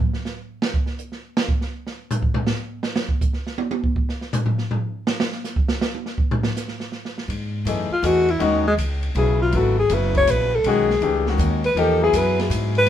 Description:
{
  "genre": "modal jazz",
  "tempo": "162 BPM",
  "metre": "3/4",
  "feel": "swing 66% on 8ths",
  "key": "G# phrygian from 7.3 s",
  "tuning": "A4 = 442 Hz",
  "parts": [
    { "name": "open jazz drum kit", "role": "drums", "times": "0.0-12.9 s", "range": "hi-hat, kick drum, ride cymbal, snare drum, toms", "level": "-24 LUFS", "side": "right 2 dB", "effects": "none" },
    { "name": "upright bass", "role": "bass", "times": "7.3-12.9 s", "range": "F#1 to G#2", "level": "-22 LUFS", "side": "equal", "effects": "none" },
    { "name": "clear grand piano", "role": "accompaniment", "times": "7.7-12.8 s", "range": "C#3 to A4", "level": "-24 LUFS", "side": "left 5 dB", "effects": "none" },
    { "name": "breathy alto saxophone", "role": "melody", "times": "7.9-12.9 s", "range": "G#3 to C#5", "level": "-19 LUFS", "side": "left 1 dB", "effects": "none" }
  ],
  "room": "moderate studio reverb, RT60 0.5 s",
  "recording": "minimal, uncompressed stereo recording",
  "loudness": "-19 LUFS",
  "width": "side -10 dB against mid",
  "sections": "0.0-7.3 A section; 7.3-12.9 A section",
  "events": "drum solo 0.0-7.3; alto saxophone solo 7.3-12.9",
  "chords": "0.0 N.C.; 7.3 G#m7; 11.8 Bsus4",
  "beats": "0.24 | 0.61 0.99 1.36 | 1.73 2.10 2.47 | 2.84 3.21 3.58 | 3.96 4.33 4.70 | 5.07 5.44 5.81 | 6.18 6.55 6.92 | 7.30 7.67 8.04 | 8.41 8.78 9.16 | 9.53 9.90 10.27 | 10.64 11.02 11.39 | 11.76 12.13 12.50 | 12.87"
}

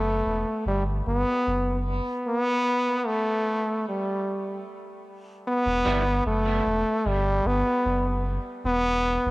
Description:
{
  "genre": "dub reggae",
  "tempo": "75 BPM",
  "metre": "4/4",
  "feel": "straight",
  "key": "E minor",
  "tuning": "A4 = 440 Hz",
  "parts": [
    { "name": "brilliant trombone", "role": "melody", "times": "0.0-9.3 s", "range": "G3 to B3", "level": "-24 LUFS", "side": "equal", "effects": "cassette tape, tape echo" },
    { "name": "warm sub bass", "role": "bass", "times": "0.0-9.3 s", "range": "E1 to G1", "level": "-28 LUFS", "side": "equal", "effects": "tube saturation" },
    { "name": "electric guitar at the edge of break-up", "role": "accompaniment", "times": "5.9-6.0 s", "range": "G3 to E4", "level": "-34 LUFS", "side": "right 3 dB", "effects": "ensemble chorus, cassette tape, tape echo" }
  ],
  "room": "moderate spring reverb, RT60 2.5 s",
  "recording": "home recording on cassette",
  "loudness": "-23 LUFS",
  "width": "side -20 dB against mid",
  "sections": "0.0-5.4 A section; 5.4-9.3 B section",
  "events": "break 0.0-2.3",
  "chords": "0.0 Em (rootless); 2.3 N.C.; 5.4 Em",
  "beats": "0.66 1.46 | 2.25 3.05 3.85 4.65 | 5.45 6.25 7.04 7.84 | 8.64"
}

